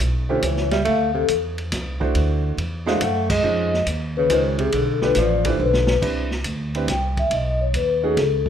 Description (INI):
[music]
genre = jazz, small-group swing and bop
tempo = 140 BPM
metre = 3/4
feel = swing 68% on 8ths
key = unclear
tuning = A4 = 443 Hz
[part]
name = upright bass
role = bass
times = 0.0-8.5 s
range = A1 to F#2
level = -24 LUFS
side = equal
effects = none
[part]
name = open jazz drum kit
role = drums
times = 0.0-8.5 s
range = crash cymbal, hi-hat, kick drum, ride cymbal, snare drum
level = -28 LUFS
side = equal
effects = none
[part]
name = vibraphone with soft mallets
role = melody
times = 0.3-8.5 s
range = Ab4 to G5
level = -21 LUFS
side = left 4 dB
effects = none
[part]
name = breathy tenor saxophone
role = second line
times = 0.3-5.9 s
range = C3 to A3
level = -25 LUFS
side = right 4 dB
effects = none
[part]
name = warm upright piano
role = accompaniment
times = 0.3-8.2 s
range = Ab3 to C5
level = -27 LUFS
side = right 5 dB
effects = none
[sound]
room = light reverb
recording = none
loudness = -18 LUFS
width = side -9 dB against mid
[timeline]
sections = 0.0-6.0 A section; 6.0-8.5 B section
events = band accent 3.2; drum fill 5.6-6.0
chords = 0.0 A7b13; 0.9 Dsus2; 2.2 D9; 3.4 Dbmaj9; 4.7 G9; 6.0 Cmaj9; 7.3 B9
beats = 0.00 0.43 | 0.86 1.29 1.72 | 2.15 2.58 3.01 | 3.44 3.87 4.30 | 4.73 5.16 5.59 | 6.02 6.45 6.88 | 7.31 7.74 8.17